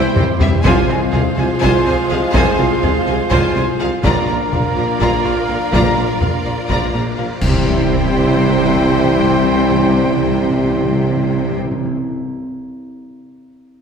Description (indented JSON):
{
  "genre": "cinematic, epic orchestral film score",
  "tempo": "248 BPM (eighths)",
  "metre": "7/8",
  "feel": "straight",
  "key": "unclear",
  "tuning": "A4 = 443 Hz",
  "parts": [
    { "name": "clear studio violin section", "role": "melody", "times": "0.0-11.6 s", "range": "E5 to Bb5", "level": "-25 LUFS", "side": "left 3 dB", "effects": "none" },
    { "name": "clear studio violin section", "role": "second line", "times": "0.0-11.6 s", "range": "G4 to D5", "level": "-26 LUFS", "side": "equal", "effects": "none" },
    { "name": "rich symphonic viola section", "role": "accompaniment", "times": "0.0-11.6 s", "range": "E4 to F4", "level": "-25 LUFS", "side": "right 2 dB", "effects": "none" },
    { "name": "clear symphonic string section", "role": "sustained chords", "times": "0.0-11.6 s", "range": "E4 to G5", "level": "-25 LUFS", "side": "equal", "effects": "none" },
    { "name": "mellow French horn section", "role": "sustained chords", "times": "0.0-11.6 s", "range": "C4 to G4", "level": "-24 LUFS", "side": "left 3 dB", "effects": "none" },
    { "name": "mellow trombone section", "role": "sustained chords", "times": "0.0-11.6 s", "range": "E3 to Bb3", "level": "-26 LUFS", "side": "right 1 dB", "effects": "none" },
    { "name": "mellow trumpet section", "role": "stabs", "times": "0.0-11.6 s", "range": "Bb4 to C5", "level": "-26 LUFS", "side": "right 4 dB", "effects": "none" },
    { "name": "clear tuba", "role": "bass", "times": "0.0-11.6 s", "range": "Bb1 to C2", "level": "-23 LUFS", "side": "right 2 dB", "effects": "none" },
    { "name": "clear symphonic cello section", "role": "bass", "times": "0.2-11.6 s", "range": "Bb2 to C3", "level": "-22 LUFS", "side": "equal", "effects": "none" },
    { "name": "rich symphonic double bass section", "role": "bass", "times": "0.2-11.6 s", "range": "Bb1 to C2", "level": "-23 LUFS", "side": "equal", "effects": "none" },
    { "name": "taiko ensemble", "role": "drums", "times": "0.2-7.1 s", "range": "none", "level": "-19 LUFS", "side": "left 1 dB", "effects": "none" },
    { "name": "timpani", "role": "percussion", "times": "0.6-1.3, 7.4-11.9 s", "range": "C3", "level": "-21 LUFS", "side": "right 1 dB", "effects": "none" },
    { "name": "cymbal swell, clash cymbals and concert bass drum", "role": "percussion", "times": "4.0-8.3 s", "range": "none", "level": "-24 LUFS", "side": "equal", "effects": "none" }
  ],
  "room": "wet scoring stage reverb, RT60 1.8 s",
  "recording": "heard from further back in the room",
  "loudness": "-13 LUFS",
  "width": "side -6 dB against mid",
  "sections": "0.0-7.4 A section; 7.4-10.8 B section",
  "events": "drum fill 0.0-0.6; band accent 7.4-7.9",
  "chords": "0.0 C; 0.6 Fm/C; 4.0 Bb; 7.4 C"
}